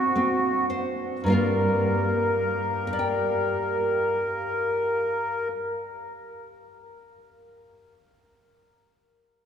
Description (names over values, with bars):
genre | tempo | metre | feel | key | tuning
acoustic folk duo or small band | 55 BPM | 4/4 | straight | G minor | A4 = 440 Hz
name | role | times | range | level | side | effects
mellow accordion | melody | 0.0-5.5 s | F#4 to Bb4 | -26 LUFS | equal | none
nylon-string guitar | accompaniment | 0.0-7.2 s | G2 to G5 | -27 LUFS | equal | none
mellow hollow large flute ensemble | sustained chords | 0.0-5.5 s | D4 to Bb5 | -34 LUFS | left 1 dB | none
room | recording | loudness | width
wet cathedral reverb, RT60 4.7 s | recorded in a church or concert hall, small room ambience | -23 LUFS | side -8 dB against mid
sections
0.0-1.2 A section; 1.2-5.6 B section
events
slowing down 0.0-1.2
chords
0.0 D7; 1.2 Gm7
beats
0.16 | 1.24 2.33 3.42 4.51